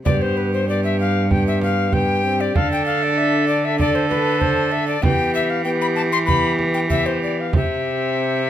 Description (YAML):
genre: classical, renaissance-style consort dance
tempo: 96 BPM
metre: 4/4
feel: straight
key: unclear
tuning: A4 = 440 Hz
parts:
  - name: alto recorder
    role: melody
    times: 0.1-8.5 s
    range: B4 to C6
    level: -22 LUFS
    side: left 5 dB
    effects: none
  - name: warm viola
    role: second line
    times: 0.1-8.5 s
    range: G4 to A4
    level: -24 LUFS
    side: right 2 dB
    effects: none
  - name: clear trombone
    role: accompaniment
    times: 0.1-8.5 s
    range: B3 to D4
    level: -26 LUFS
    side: left 2 dB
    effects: none
  - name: rich cello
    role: bass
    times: 0.1-8.5 s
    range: G2 to E3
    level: -22 LUFS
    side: right 2 dB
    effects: none
  - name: frame drum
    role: percussion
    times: 0.1-7.8 s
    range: none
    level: -21 LUFS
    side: right 2 dB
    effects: none
room: light reverb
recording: minimal, uncompressed stereo recording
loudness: -17 LUFS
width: side -11 dB against mid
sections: 0.1-8.5 A section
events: none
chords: 0.1 G; 2.6 D5; 5.0 Em; 7.5 C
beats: | 0.06 0.69 1.31 1.93 | 2.56 3.18 3.80 4.42 | 5.04 5.66 6.28 6.91 | 7.54 8.18